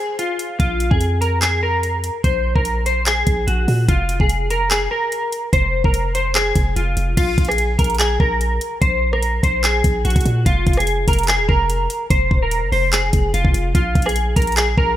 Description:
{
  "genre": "hip hop, trap",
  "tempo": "146 BPM",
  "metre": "4/4",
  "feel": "half-time",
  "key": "unclear",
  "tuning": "A4 = 440 Hz",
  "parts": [
    { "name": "clean electric guitar", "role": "melody", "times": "0.0-15.0 s", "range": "F4 to C5", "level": "-19 LUFS", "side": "equal", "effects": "analog chorus" },
    { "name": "trap drum kit", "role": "drums", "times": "0.2-14.9 s", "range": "crash cymbal, handclaps, hi-hat, kick drum, rim click", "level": "-19 LUFS", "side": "equal", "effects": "none" },
    { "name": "warm 808-style bass", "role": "bass", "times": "0.6-15.0 s", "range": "Eb1 to Bb2", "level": "-20 LUFS", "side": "equal", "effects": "none" }
  ],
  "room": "light reverb",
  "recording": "none",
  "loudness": "-15 LUFS",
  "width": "side -12 dB against mid",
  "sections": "0.0-7.2 A section; 7.2-15.0 B section",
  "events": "break 0.0-0.6",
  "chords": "0.0 N.C.; 0.6 Bb5; 3.9 Fm; 7.2 Absus2/Bb; 10.5 Fm; 13.7 Absus2/Bb",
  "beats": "0.19 | 0.60 1.01 1.42 1.83 | 2.24 2.65 3.06 3.47 | 3.88 4.30 4.71 5.12 | 5.53 5.94 6.35 6.76 | 7.17 7.58 7.99 8.40 | 8.82 9.23 9.64 10.05 | 10.46 10.87 11.28 11.69 | 12.10 12.52 12.93 13.34 | 13.75 14.16 14.57"
}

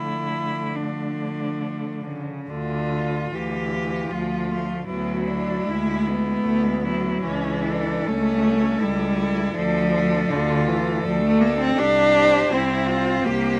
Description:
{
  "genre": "classical, lyrical piece for cello ensemble",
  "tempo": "65-83 BPM",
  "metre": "3/4",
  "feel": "rubato",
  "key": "D minor",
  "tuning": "A4 = 445 Hz",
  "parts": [
    { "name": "clear cello", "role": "melody", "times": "0.0-13.6 s", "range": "D4 to C5", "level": "-33 LUFS", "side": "equal", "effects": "none" },
    { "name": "warm cello", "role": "second line", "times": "0.0-13.6 s", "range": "F3 to G4", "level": "-31 LUFS", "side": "equal", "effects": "none" },
    { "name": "rich cello", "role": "accompaniment", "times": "0.0-13.6 s", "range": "C#3 to D4", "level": "-25 LUFS", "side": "equal", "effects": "none" },
    { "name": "rich cello", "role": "bass", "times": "0.0-13.6 s", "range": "C2 to D3", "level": "-30 LUFS", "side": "equal", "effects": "none" }
  ],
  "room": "little or no reverb",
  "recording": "close, detailed microphones",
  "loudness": "-23 LUFS",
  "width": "mono",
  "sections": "0.0-2.5 A section; 2.5-13.6 A section",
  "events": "none",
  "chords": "0.0 Dm; 4.9 E7/D; 7.2 A/C#; 9.6 Dm; 11.8 C5",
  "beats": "0.74 1.61 | 2.50 3.32 4.10 | 4.88 5.66 6.43 | 7.24 8.07 8.81 | 9.55 10.30 11.05 | 11.79 12.52 13.27"
}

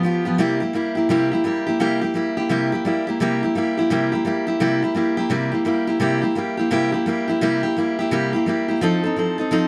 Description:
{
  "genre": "rock",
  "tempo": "171 BPM",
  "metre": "4/4",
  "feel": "swing 64% on 8ths",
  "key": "C mixolydian",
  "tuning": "A4 = 440 Hz",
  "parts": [
    { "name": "picked steel-string acoustic guitar", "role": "solo", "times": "0.0-9.7 s", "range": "C3 to A4", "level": "-21 LUFS", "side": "equal", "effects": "none" }
  ],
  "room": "light reverb",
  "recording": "none",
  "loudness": "-21 LUFS",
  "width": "mono",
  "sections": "0.0-3.2 A section; 3.2-9.7 B section",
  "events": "none",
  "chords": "0.4 C7; 8.8 F7",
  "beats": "0.04 | 0.39 0.74 1.09 1.44 | 1.80 2.15 2.50 2.85 | 3.20 3.55 3.90 4.26 | 4.61 4.96 5.31 5.66 | 6.01 6.36 6.71 7.06 | 7.41 7.76 8.11 8.46 | 8.81 9.16 9.52"
}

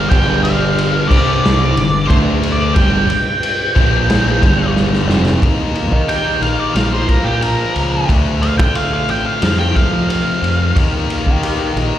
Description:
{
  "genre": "quiet-loud alternative rock",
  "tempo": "90 BPM",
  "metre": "4/4",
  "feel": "straight",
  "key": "G minor",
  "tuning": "A4 = 440 Hz",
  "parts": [
    { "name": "octave-fuzz lead guitar", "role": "melody", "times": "0.0-10.7 s", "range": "G4 to G5", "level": "-20 LUFS", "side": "right 1 dB", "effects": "distortion, slapback echo, digital delay" },
    { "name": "fuzz guitar", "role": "riff", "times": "0.0-5.4 s", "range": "F2 to D4", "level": "-24 LUFS", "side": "equal", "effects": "none" },
    { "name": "heavy high-gain guitar", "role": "riff", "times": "0.0-12.0 s", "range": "F2 to Eb4", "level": "-21 LUFS", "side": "left 9 dB", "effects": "distortion, slapback echo" },
    { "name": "overdriven semi-hollow guitar", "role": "riff", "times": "0.0-5.4 s", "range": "F2 to D4", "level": "-22 LUFS", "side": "right 9 dB", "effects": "slapback echo" },
    { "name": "growling fingered electric bass", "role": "bass", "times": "0.0-11.9 s", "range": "F1 to F3", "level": "-18 LUFS", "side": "equal", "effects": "overdrive" },
    { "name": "raw garage drum kit", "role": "drums", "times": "0.1-11.9 s", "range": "crash cymbal, kick drum, ride cymbal, snare drum", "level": "-17 LUFS", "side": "equal", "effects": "none" },
    { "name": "electric guitar through a small old amp", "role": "arpeggios", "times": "5.4-12.0 s", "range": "F2 to G4", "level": "-25 LUFS", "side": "right 1 dB", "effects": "wide subtle chorus, slapback echo, digital delay" }
  ],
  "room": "small room ambience",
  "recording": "live gig heard through the venue's PA, recital hall reverb",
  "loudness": "-12 LUFS",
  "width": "side -11 dB against mid",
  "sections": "0.0-5.4 A section; 5.4-12.0 B section",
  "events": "drum fill 4.8-5.4; lead electric guitar solo 5.4-12.0",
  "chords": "0.0 G5; 1.1 C5; 1.8 G5; 2.1 D5; 2.8 G5; 3.8 Bb5; 4.4 G5; 5.4 Eb; 6.8 Bb; 8.1 Dm7; 9.4 F; 10.8 Eb",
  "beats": "| 0.11 0.78 1.44 2.10 | 2.76 3.43 4.09 4.76 | 5.42 6.09 6.75 7.42 | 8.09 8.76 9.43 10.10 | 10.76 11.43"
}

